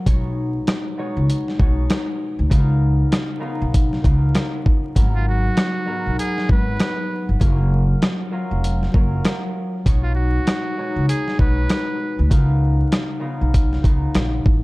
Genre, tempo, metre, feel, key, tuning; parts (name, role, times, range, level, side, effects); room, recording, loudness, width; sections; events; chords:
hip hop, boom-bap hip-hop; 98 BPM; 4/4; swing 59% on 16ths; A4 = 438 Hz
concert harp; accompaniment; 0.0-14.6 s; G#2 to C#5; -25 LUFS; left 1 dB; high-pass filter, low-pass filter
upright bass; bass; 0.1-14.6 s; E#1 to D2; -19 LUFS; equal
dusty soul sampler-style drum kit; drums; 0.1-14.6 s; hi-hat, kick drum, rim click, snare drum; -19 LUFS; equal
trumpet with metal mute; melody; 5.2-12.3 s; E#4 to B4; -27 LUFS; right 2 dB; high-pass filter, low-pass filter, analog delay
little or no reverb; dark, warm production, vinyl crackle; -17 LUFS; side -22 dB against mid
0.0-14.6 A section
break 0.1-5.0
0.1 B69; 2.5 C#13; 5.0 G#m9; 7.4 F#maj7; 9.9 B69; 12.3 C#13